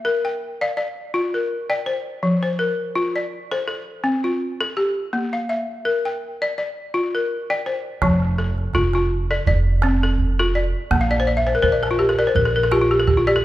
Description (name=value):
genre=west african traditional, West African string and xylophone music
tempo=83 BPM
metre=4/4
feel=swing 55% on 16ths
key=F major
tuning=A4 = 441 Hz
part: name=balafon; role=arpeggios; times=0.0-13.4 s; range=F3 to G5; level=-20 LUFS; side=left 1 dB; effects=none
part: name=upright bass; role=bass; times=8.0-13.4 s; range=F1 to Bb1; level=-22 LUFS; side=right 1 dB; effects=none
part: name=calabash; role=percussion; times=8.0-13.3 s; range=none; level=-25 LUFS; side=right 4 dB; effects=none
room=moderate recital hall reverb, RT60 1.8 s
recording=recorded in a church or concert hall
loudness=-18 LUFS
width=side -15 dB against mid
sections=0.0-8.0 A section; 8.0-13.4 A section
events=balafon fill 11.0-13.4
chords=0.0 Bb; 2.2 F; 5.1 Bb; 8.0 F; 10.9 Bb